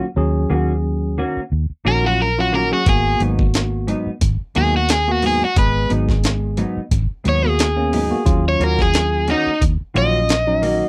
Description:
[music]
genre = straight-eighth soul blues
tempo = 89 BPM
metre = 4/4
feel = swing 55% on 16ths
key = Eb minor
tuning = A4 = 437 Hz
[part]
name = tine electric piano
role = accompaniment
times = 0.0-10.8 s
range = Gb3 to Ab4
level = -26 LUFS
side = equal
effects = none
[part]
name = mellow electric guitar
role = stabs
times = 0.0-10.8 s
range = Ab2 to Gb4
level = -25 LUFS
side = equal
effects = analog chorus
[part]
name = vintage muted fingered electric bass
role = bass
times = 0.2-10.8 s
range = Ab1 to Eb2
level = -23 LUFS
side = equal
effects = none
[part]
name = overdriven semi-hollow guitar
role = melody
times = 1.9-10.9 s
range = Eb4 to Eb5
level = -21 LUFS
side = equal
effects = slapback echo
[part]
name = jungle sampler-style drum kit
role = drums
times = 2.9-10.8 s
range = hi-hat, kick drum, snare drum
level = -22 LUFS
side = equal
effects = overdrive
[sound]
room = little or no reverb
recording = dry, close 1970s-style studio recording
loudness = -18 LUFS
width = mono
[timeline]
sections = 0.0-10.9 A section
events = none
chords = 0.0 Ebm7; 2.9 Abm7; 8.3 Ebm7

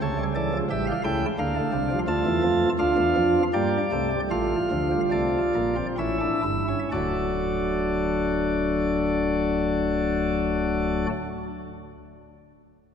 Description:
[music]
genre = classical, baroque-style 4-part fugue for pipe organ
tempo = 61-88 BPM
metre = 3/4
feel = straight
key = unclear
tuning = A4 = 442 Hz
[part]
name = chamber organ, sparkling flutes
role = solo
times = 0.0-11.1 s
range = D1 to A5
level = -22 LUFS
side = equal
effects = none
[sound]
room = wet church reverb, RT60 3.0 s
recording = minimal, uncompressed stereo recording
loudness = -22 LUFS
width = side -7 dB against mid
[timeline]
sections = 0.0-6.9 A section; 6.9-12.8 B section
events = slowing down 1.0-6.9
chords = 0.0 A7/C#; 1.4 Dm; 3.5 Gm; 4.3 Dm/A; 6.0 A7; 6.9 D

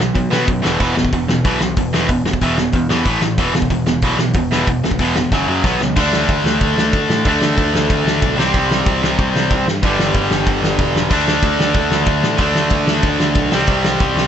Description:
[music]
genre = punk rock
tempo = 186 BPM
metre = 4/4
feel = straight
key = unclear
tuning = A4 = 440 Hz
[part]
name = distorted electric guitar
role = riff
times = 0.0-14.3 s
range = E2 to D4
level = -16 LUFS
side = equal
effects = overdrive
[part]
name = growling picked electric bass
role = bass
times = 0.0-14.3 s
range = E1 to B2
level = -22 LUFS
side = equal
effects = overdrive
[part]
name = loose indie drum kit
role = drums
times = 0.0-14.2 s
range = crash cymbal, hi-hat, kick drum, ride cymbal, snare drum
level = -18 LUFS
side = equal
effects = none
[sound]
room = little or no reverb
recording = nothing above 8.0 kHz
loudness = -14 LUFS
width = side -9 dB against mid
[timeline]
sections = 0.0-6.0 A section; 6.0-14.3 B section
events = drum fill 5.3-6.0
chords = 0.0 B5; 0.6 E5; 3.1 A5; 3.4 E5; 5.3 F#5; 5.6 B5; 6.0 D5; 8.4 C5; 9.8 G5; 11.1 D5; 13.5 C5

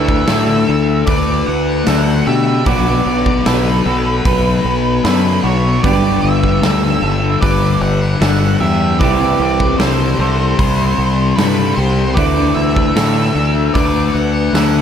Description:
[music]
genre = rock, shoegaze and dream pop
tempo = 76 BPM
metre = 4/4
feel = straight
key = D major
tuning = A4 = 441 Hz
[part]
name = octave-fuzz lead guitar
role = melody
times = 0.0-14.8 s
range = B4 to F#5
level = -20 LUFS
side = right 2 dB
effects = distortion, ping-pong delay
[part]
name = electric guitar through a small old amp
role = arpeggios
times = 0.0-14.8 s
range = F#4 to B5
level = -22 LUFS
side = right 1 dB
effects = lush chorus, ping-pong delay
[part]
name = overdriven semi-hollow guitar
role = riff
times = 0.0-14.8 s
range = G2 to G4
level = -23 LUFS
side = right 10 dB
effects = reverse reverb
[part]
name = thick fuzz guitar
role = riff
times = 0.0-14.8 s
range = G2 to D4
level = -17 LUFS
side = left 6 dB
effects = distortion, lush chorus
[part]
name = growling fingered electric bass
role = bass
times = 0.0-14.8 s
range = G1 to B2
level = -17 LUFS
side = equal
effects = overdrive
[part]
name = huge arena drum kit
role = drums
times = 0.1-14.7 s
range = hi-hat, kick drum, snare drum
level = -20 LUFS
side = right 1 dB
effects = none
[sound]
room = moderate lush hall reverb, RT60 2.4 s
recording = dreamy mix soaked in reverb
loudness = -12 LUFS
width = side -8 dB against mid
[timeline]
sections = 0.0-14.8 A section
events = none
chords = 0.0 Dsus2; 2.7 Bm7; 5.8 G; 9.0 C; 12.2 Dsus2

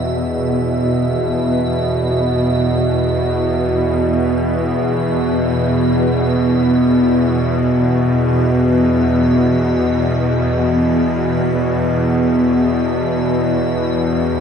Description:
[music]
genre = dark ambient drone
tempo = free time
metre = none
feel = none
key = E major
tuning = A4 = 440 Hz
[part]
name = bronze singing bowl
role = arpeggios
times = 0.0-6.2 s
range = none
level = barely audible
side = none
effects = none
[part]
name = bowed-like drone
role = drone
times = 0.0-14.4 s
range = E2 to B2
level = -14 LUFS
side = equal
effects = built-in reverb
[part]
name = icy glass pad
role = texture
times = 0.0-14.4 s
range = E5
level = -28 LUFS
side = right 3 dB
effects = chorus, built-in reverb
[sound]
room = wet plate reverb, RT60 2.7 s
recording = dreamy mix soaked in reverb, cassette tape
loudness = -14 LUFS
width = side -7 dB against mid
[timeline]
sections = 0.0-14.4 A section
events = fade-out on ambient pad 0.0-14.4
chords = 0.0 E5

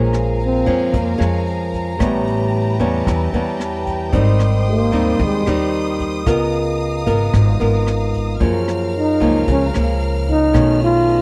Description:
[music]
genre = bossa nova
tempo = 112 BPM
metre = 4/4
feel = straight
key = Bb minor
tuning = A4 = 436 Hz
[part]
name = nylon-string guitar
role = accompaniment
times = 0.0-11.2 s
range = F2 to Bb4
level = -22 LUFS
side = equal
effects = none
[part]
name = vibraphone with soft mallets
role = accompaniment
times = 0.0-11.2 s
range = C#4 to A5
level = -28 LUFS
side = equal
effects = none
[part]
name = rich studio string section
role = sustained chords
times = 0.0-11.2 s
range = Bb4 to F6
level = -30 LUFS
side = equal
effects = none
[part]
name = upright bass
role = bass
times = 0.0-11.2 s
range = Ab1 to Gb2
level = -22 LUFS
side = equal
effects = none
[part]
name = jazz brush drum kit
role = drums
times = 0.1-11.2 s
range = hi-hat, kick drum, rim click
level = -25 LUFS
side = equal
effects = none
[part]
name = breathy trombone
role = melody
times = 0.5-1.2, 4.7-5.5, 9.0-11.2 s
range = Ab3 to F4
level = -19 LUFS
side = equal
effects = none
[sound]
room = little or no reverb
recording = dry, close 1970s-style studio recording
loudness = -17 LUFS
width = mono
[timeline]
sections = 0.0-11.2 A section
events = trombone solo 0.0-11.2; vibraphone fill 3.3-4.1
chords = 0.0 Bbm7; 2.0 A9; 4.1 Abmaj7; 6.3 Db13; 8.4 Gbmaj7; 10.6 B9

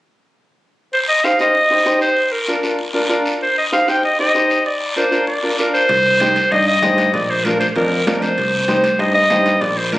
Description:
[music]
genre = latin, cumbia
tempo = 193 BPM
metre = 4/4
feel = straight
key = C minor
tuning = A4 = 440 Hz
[part]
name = bright clarinet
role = melody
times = 0.9-10.0 s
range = Bb4 to G5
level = -15 LUFS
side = equal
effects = plate reverb
[part]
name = guiro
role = percussion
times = 0.9-10.0 s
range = none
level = -26 LUFS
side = equal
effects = none
[part]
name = bright upright piano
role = accompaniment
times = 1.2-10.0 s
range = D4 to D5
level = -20 LUFS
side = equal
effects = none
[part]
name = modern bright picked electric bass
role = bass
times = 5.9-10.0 s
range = Bb1 to G2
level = -21 LUFS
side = equal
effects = none
[part]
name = congas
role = percussion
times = 5.9-10.0 s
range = none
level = -26 LUFS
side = equal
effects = none
[part]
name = timbales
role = percussion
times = 5.9-10.0 s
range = none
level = -28 LUFS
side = right 4 dB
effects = none
[sound]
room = moderate studio reverb, RT60 0.7 s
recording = recorded on a phone in the room, club reverb, compression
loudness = -13 LUFS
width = side -17 dB against mid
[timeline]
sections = 0.9-5.9 A section; 5.9-10.0 B section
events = none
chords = 0.9 Cm; 2.2 Bb; 3.4 Cm; 4.7 Bb; 5.9 Cm; 7.1 Bb; 8.4 Cm

